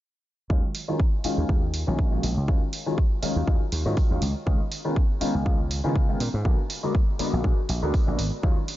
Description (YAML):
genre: filtered disco house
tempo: 121 BPM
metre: 4/4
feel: swing 55% on 16ths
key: Eb minor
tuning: A4 = 441 Hz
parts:
  - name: clear grand piano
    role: accompaniment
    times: 0.5-8.5 s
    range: D3 to Gb4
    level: -29 LUFS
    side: left 1 dB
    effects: phaser, sidechain pumping, low-pass filter
  - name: dry thumbed slap bass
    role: bass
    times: 0.5-8.5 s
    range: Ab1 to Db3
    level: -27 LUFS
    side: equal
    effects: sidechain pumping, low-pass filter
  - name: electronic kick drum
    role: drums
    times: 0.5-8.5 s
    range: none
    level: -23 LUFS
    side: equal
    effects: none
  - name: electronic hi-hat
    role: drums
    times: 0.7-8.8 s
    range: none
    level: -34 LUFS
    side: right 3 dB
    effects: sidechain pumping on hats
room: little or no reverb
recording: nothing above 7.5 kHz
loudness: -22 LUFS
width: side -15 dB against mid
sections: 0.5-8.8 A section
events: filter sweep 0.5-8.8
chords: 0.5 Ebm11; 4.2 Db9; 6.2 Bb7b9b13